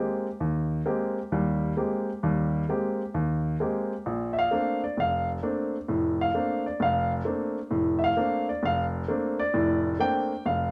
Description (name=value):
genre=jazz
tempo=131 BPM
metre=4/4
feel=swing 67% on 8ths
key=Bb major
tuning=A4 = 440 Hz
part: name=warm baby grand piano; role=solo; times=0.0-10.7 s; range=F1 to G5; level=-27 LUFS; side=equal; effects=none
room=wet studio reverb, RT60 0.7 s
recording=none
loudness=-27 LUFS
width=mono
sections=0.0-4.1 A section; 4.1-10.7 B section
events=none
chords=0.0 Abmaj9; 4.1 Bbmaj9